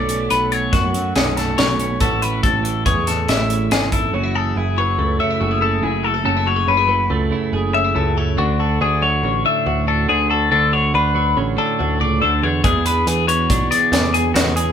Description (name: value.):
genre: math rock and midwest emo.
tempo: 141 BPM.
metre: 5/4.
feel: straight.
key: unclear.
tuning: A4 = 441 Hz.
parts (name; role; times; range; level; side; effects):
twelve-string electric guitar; accompaniment; 0.0-14.7 s; F#2 to B4; -22 LUFS; right 5 dB; none.
clean electric guitar; arpeggios; 0.0-14.7 s; F#4 to E5; -19 LUFS; left 5 dB; phaser.
picked electric bass; bass; 0.0-14.7 s; F#1 to F#2; -22 LUFS; equal; none.
crisp fusion drum kit; drums; 0.1-4.0, 12.6-14.7 s; hi-hat, kick drum, snare drum; -20 LUFS; equal; none.
room: moderate large studio reverb, RT60 1.2 s.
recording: band playing live in one room.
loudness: -15 LUFS.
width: side -8 dB against mid.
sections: 0.0-4.1 A section; 4.1-14.7 B section.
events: none.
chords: 0.0 Bm9; 2.0 A6; 4.1 F#m9; 8.4 Dmaj7; 12.6 E7.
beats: 0.30 0.73 1.16 1.58 | 2.01 2.43 2.86 3.28 3.71 | 4.13 4.56 4.99 5.41 5.84 | 6.26 6.69 7.11 7.54 7.96 | 8.39 8.81 9.24 9.66 10.09 | 10.52 10.94 11.37 11.79 12.22 | 12.64 13.07 13.50 13.92 14.35.